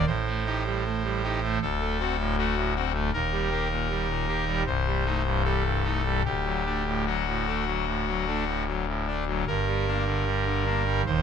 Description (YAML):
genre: classical, chorale-style piece for pipe organ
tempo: 77 BPM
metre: 4/4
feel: uneven beats, rubato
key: G minor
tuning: A4 = 442 Hz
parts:
  - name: pipe organ, trumpet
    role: solo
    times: 0.0-11.2 s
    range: C1 to C5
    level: -24 LUFS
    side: equal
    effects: none
room: moderate stone room reverb, RT60 1.0 s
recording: close, detailed microphones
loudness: -24 LUFS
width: side -7 dB against mid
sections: 0.0-11.2 A section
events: none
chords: 0.1 Am7b5; 1.6 D7; 3.1 Eb; 4.7 Am7b5/C; 6.3 D; 9.5 Gm